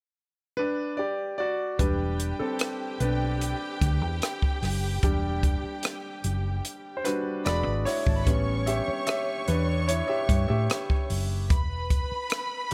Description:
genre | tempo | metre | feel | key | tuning
lush 1970s-style soul | 74 BPM | 4/4 | straight | E minor | A4 = 441 Hz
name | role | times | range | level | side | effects
bright concert grand piano | accompaniment | 0.6-12.7 s | G3 to E5 | -32 LUFS | equal | none
dark studio string section | second line | 1.8-12.7 s | F#4 to C#6 | -37 LUFS | equal | none
hollow-body short-scale fingered electric bass | bass | 1.8-12.7 s | E1 to A2 | -30 LUFS | equal | none
compact cocktail drum kit | drums | 1.8-12.7 s | hi-hat, kick drum, rim click | -29 LUFS | equal | none
room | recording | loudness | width
light reverb, small room ambience | none | -27 LUFS | mono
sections
0.0-1.8 A section; 1.8-12.7 B section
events
grand piano solo 1.8-12.7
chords
0.0 Dadd11; 1.8 Em7; 7.5 E7; 8.3 A7; 11.5 E5

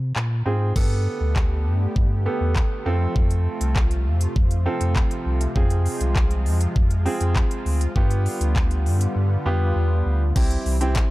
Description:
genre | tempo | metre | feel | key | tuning
dance-pop | 100 BPM | 4/4 | straight | unclear | A4 = 437 Hz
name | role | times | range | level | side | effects
warm sub bass | bass | 0.0-11.0 s | C2 to C3 | -21 LUFS | equal | sidechain pumping
pop drum kit | drums | 0.2-11.1 s | crash cymbal, handclaps, hi-hat, kick drum | -22 LUFS | equal | none
clear grand piano | accompaniment | 0.5-11.1 s | B3 to A4 | -28 LUFS | right 3 dB | sidechain pumping
soft supersaw | sustained chords | 0.8-11.1 s | C3 to G4 | -30 LUFS | equal | sidechain pumping
group handclap | percussion | 11.0-11.1 s | none | -33 LUFS | left 5 dB | none
room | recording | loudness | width
little or no reverb | dark, warm production | -19 LUFS | side -18 dB against mid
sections
0.8-10.4 A section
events
break 0.0-0.8; drums muted 9.2-10.4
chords
0.0 Ab6; 0.8 Gadd9; 2.9 F; 5.6 Fm; 8.0 G7; 10.4 C

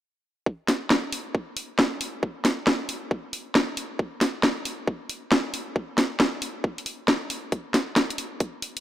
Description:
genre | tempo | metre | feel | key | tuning
UK garage, two-step garage | 136 BPM | 4/4 | swing 64% on 16ths | none | none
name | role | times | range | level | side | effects
electronic kick drum | drums | 0.5-8.5 s | none | -26 LUFS | equal | high-pass filter on kick
garage drum kit | drums | 0.7-8.8 s | hi-hat, snare drum | -24 LUFS | equal | none
room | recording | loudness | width
moderate plate reverb, RT60 2.8 s | dark, warm production | -24 LUFS | side -13 dB against mid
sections
0.5-8.8 A section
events
none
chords
none

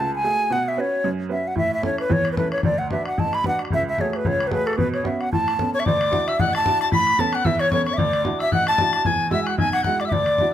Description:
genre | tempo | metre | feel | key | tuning
celtic folk, Celtic reel | 225 BPM | 4/4 | swing 56% on 8ths | A major | A4 = 441 Hz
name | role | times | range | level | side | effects
wooden flute | melody | 0.0-10.5 s | A4 to B5 | -21 LUFS | left 1 dB | none
bright upright piano | accompaniment | 0.0-10.5 s | A1 to B4 | -26 LUFS | right 5 dB | none
bodhran | percussion | 1.6-10.4 s | none | -25 LUFS | left 3 dB | none
tin whistle | second line | 5.7-10.5 s | C#6 to B6 | -26 LUFS | left 6 dB | none
room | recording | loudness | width
moderate recital hall reverb, RT60 1.4 s | close, detailed microphones | -19 LUFS | side -11 dB against mid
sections
0.0-5.8 A section; 5.8-10.5 B section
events
none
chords
0.0 F#madd9/C#; 0.5 Bsus2; 1.6 A; 2.6 D6; 3.7 F#madd9/C#; 4.8 Bsus2; 5.3 Aadd9; 5.8 Dadd9; 6.9 Aadd9; 8.0 Dadd9; 9.0 Eadd9

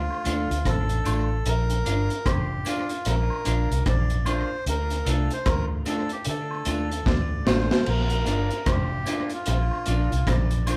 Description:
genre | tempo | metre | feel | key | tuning
roots reggae | 75 BPM | 4/4 | swing 61% on 16ths | Bb major | A4 = 440 Hz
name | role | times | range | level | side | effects
melodica | melody | 0.0-10.8 s | F4 to D5 | -33 LUFS | equal | none
vintage muted fingered electric bass | bass | 0.0-10.8 s | F1 to D3 | -28 LUFS | equal | none
woodblock and tambourine | percussion | 0.1-10.8 s | none | -39 LUFS | equal | none
semi-hollow electric guitar | accompaniment | 0.2-10.8 s | A3 to F4 | -34 LUFS | equal | harmonic tremolo, tape echo
crunchy breakbeat drum kit | drums | 0.3-10.8 s | crash cymbal, hi-hat, kick drum, rim click, snare drum | -30 LUFS | equal | tape echo
room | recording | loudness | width
moderate large studio reverb, RT60 0.9 s | band playing live in one room | -25 LUFS | mono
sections
0.0-10.8 A section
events
drum fill 7.1-7.9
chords
0.0 Dm; 1.5 Bb; 4.7 Dm; 7.9 Bb

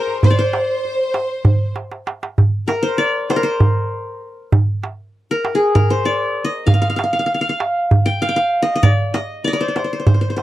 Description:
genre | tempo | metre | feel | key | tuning
Turkish makam ensemble | 195 BPM (eighths) | 7/8 | straight | C makam ussak | A4 = 441 Hz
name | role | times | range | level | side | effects
qanun | melody | 0.0-10.4 s | Ab4 to G5 | -18 LUFS | left 1 dB | none
bright studio violin section | second line | 0.0-1.7 s | Bb4 to C5 | -21 LUFS | equal | none
darbuka | percussion | 0.1-10.4 s | none | -15 LUFS | right 1 dB | none
room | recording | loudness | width
little or no reverb | dry, close 1970s-style studio recording | -15 LUFS | side -15 dB against mid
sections
0.0-2.4 A section; 2.4-10.4 B section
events
drum fill 1.8-2.4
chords
none

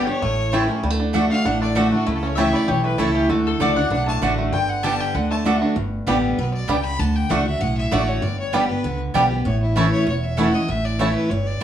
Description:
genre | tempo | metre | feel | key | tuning
bluegrass | 195 BPM | 4/4 | straight | D major | A4 = 440 Hz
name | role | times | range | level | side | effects
bluegrass banjo | melody | 0.0-11.1 s | D3 to G4 | -26 LUFS | right 1 dB | none
clear fiddle | melody | 0.0-11.6 s | E4 to B5 | -27 LUFS | left 2 dB | none
lap resonator guitar | second line | 0.0-5.4 s | E4 to A5 | -29 LUFS | left 6 dB | none
picked steel-string acoustic guitar | accompaniment | 0.0-11.6 s | E2 to G4 | -22 LUFS | equal | none
upright bass | bass | 0.0-11.6 s | E1 to D2 | -25 LUFS | right 1 dB | none
mandolin | stabs | 0.5-11.6 s | A3 to A5 | -24 LUFS | right 4 dB | none
room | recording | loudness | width
wet studio reverb, RT60 0.8 s | small room ambience | -18 LUFS | side -10 dB against mid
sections
0.0-5.8 A section; 5.8-11.6 B section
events
none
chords
0.2 A; 0.8 D; 2.1 A/C#; 3.3 D; 4.5 G; 5.1 D; 5.8 G; 7.0 D; 8.2 G; 9.5 A

